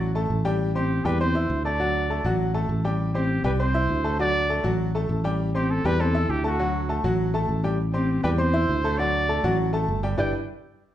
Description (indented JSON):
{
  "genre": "latin, salsa",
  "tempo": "200 BPM",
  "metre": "4/4",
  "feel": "straight",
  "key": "unclear",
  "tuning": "A4 = 439 Hz",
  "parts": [
    { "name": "bright upright piano", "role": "accompaniment", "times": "0.0-10.3 s", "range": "F#3 to E6", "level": "-26 LUFS", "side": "left 1 dB", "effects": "none" },
    { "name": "fingered electric bass", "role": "bass", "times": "0.0-10.3 s", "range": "G1 to E2", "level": "-25 LUFS", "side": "equal", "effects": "none" },
    { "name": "warm trumpet", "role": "melody", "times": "0.8-10.3 s", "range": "F#4 to G5", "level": "-28 LUFS", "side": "right 1 dB", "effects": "none" }
  ],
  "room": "wet large studio reverb, RT60 0.9 s",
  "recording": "heard from further back in the room",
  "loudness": "-21 LUFS",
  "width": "side -12 dB against mid",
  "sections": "0.0-7.8 A section; 7.8-10.2 B section",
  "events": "none",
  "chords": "0.0 D (rootless); 0.6 Am7; 1.8 D; 3.0 Am7; 4.2 D; 5.4 Am7; 6.6 D; 7.8 Am7; 9.0 D; 10.2 G6",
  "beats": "0.00 0.30 | 0.60 0.90 1.20 1.50 | 1.80 2.10 2.40 2.70 | 3.00 3.29 3.59 3.89 | 4.19 4.49 4.79 5.09 | 5.39 5.69 5.99 6.29 | 6.59 6.89 7.19 7.49 | 7.79 8.09 8.39 8.69 | 8.99 9.29 9.59 9.89 | 10.19"
}